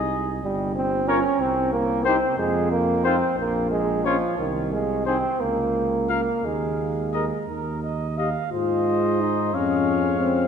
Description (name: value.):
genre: classical, brass quintet.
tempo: 57-62 BPM (dotted quarters).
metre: 6/8.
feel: rubato.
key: Ab major.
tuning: A4 = 439 Hz.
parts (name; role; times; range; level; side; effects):
mellow cornet; melody; 0.0-10.5 s; C5 to F5; -30 LUFS; left 7 dB; none.
clear flugelhorn; second line; 0.0-10.5 s; F4 to F5; -31 LUFS; right 5 dB; none.
mellow French horn; accompaniment; 0.0-10.5 s; C4 to Ab4; -28 LUFS; left 4 dB; none.
mellow bass trombone; bass; 0.0-10.5 s; G1 to Ab2; -27 LUFS; right 1 dB; none.
clear trombone; accompaniment; 0.4-10.5 s; Eb3 to Db4; -24 LUFS; right 2 dB; none.
room: wet church reverb, RT60 3.4 s.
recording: none.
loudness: -21 LUFS.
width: side -7 dB against mid.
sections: 0.0-8.5 A section; 8.5-10.5 B section.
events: none.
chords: 0.4 G(b5, no3); 1.4 N.C.; 2.4 F5; 3.4 Bb5; 4.4 Ab/C; 5.4 Bbm/Db; 6.4 Ebsus4; 7.5 Eb5; 8.5 Ab; 9.5 Db/F.